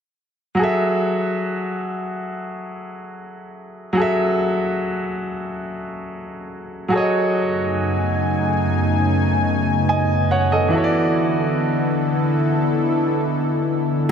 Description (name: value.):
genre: R&B.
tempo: 71 BPM.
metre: 4/4.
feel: straight.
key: F# minor.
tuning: A4 = 440 Hz.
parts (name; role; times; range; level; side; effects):
clear grand piano; accompaniment; 0.5-14.1 s; E3 to G#5; -21 LUFS; right 1 dB; none.
lush unison pad; sustained chords; 7.6-14.1 s; F#2 to G#5; -19 LUFS; left 1 dB; chorus.
room: moderate plate reverb, RT60 3.4 s.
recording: none.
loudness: -18 LUFS.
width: side -7 dB against mid.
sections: 0.6-14.1 A section.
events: none.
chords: 0.6 F#m9; 6.9 B13/F#; 10.7 E7sus4.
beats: | 0.59 1.43 2.28 3.12 | 3.97 4.81 5.66 6.50 | 7.35 8.19 9.04 9.88 | 10.73 11.57 12.42 13.26 | 14.11.